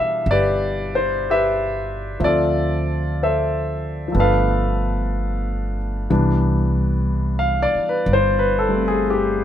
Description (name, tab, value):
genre	jazz ballad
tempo	62 BPM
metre	4/4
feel	swing 67% on 8ths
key	C major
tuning	A4 = 441 Hz
part	warm concert grand piano	accompaniment	0.0-9.4 s	B2 to F5	-19 LUFS	left 2 dB	none
part	upright bass	bass	0.3-9.4 s	G1 to D2	-22 LUFS	right 1 dB	none
room	little or no reverb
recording	close, detailed microphones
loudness	-18 LUFS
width	side -10 dB against mid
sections	0.0-6.1 A section; 6.1-9.4 B section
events	none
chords	0.0 Cmaj9; 2.2 Dm7; 4.1 G9; 6.1 Cmaj9